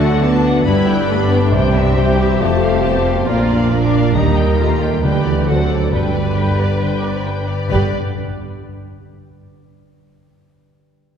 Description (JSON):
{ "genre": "cinematic", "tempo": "136 BPM", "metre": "4/4", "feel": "straight", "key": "G major", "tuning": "A4 = 439 Hz", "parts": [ { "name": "rich symphonic violin section", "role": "melody", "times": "0.0-8.0 s", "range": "D5 to B5", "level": "-28 LUFS", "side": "left 4 dB", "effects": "none" }, { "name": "dark cor anglais", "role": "second line", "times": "0.0-7.9 s", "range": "A4 to D5", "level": "-26 LUFS", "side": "right 1 dB", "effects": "none" }, { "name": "mellow clarinet", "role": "second line", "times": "0.0-7.9 s", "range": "F4 to A4", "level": "-29 LUFS", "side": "equal", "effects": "none" }, { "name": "mellow hollow concert flute", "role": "second line", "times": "0.0-8.0 s", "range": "D5 to F5", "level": "-28 LUFS", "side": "left 2 dB", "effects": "none" }, { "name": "warm symphonic violin section", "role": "second line", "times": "0.0-7.9 s", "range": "A3 to D5", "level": "-28 LUFS", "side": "left 3 dB", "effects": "none" }, { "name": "rich studio viola section", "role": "accompaniment", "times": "0.0-8.0 s", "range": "D4 to B4", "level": "-24 LUFS", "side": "equal", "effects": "none" }, { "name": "dark trombone section", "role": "sustained chords", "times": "0.0-7.9 s", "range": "D3 to D4", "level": "-27 LUFS", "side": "right 2 dB", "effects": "none" }, { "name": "mellow French horn section", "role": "sustained chords", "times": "0.0-7.9 s", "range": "E3 to C4", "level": "-20 LUFS", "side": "left 1 dB", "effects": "none" }, { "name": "concert harp", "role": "arpeggios", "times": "0.0-9.5 s", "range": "F2 to G5", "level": "-24 LUFS", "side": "left 4 dB", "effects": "none" }, { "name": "rich symphonic cello section", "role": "bass", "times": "0.0-7.9 s", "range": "D2 to D3", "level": "-20 LUFS", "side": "right 2 dB", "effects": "none" }, { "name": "rich symphonic double bass section", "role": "bass", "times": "0.0-7.9 s", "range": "F1 to Eb2", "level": "-21 LUFS", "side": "right 2 dB", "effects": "none" }, { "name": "timpani", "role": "percussion", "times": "5.0-7.9 s", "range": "G2 to D3", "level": "-27 LUFS", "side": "right 3 dB", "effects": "none" } ], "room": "wet concert hall reverb, RT60 2.4 s", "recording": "heard from further back in the room", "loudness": "-13 LUFS", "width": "side -7 dB against mid", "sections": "0.0-7.7 A section; 7.7-9.5 B section", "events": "none", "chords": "0.0 D; 0.6 G; 1.5 C; 2.4 F; 3.3 Bb; 4.1 Eb; 5.0 G/D; 5.5 D7; 5.9 G", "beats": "0.21 | 0.65 1.08 1.52 1.96 | 2.40 2.83 3.27 3.71 | 4.15 4.59 5.03 5.47 | 5.92 6.36 6.81 7.25 | 7.70 8.14 8.59 9.03" }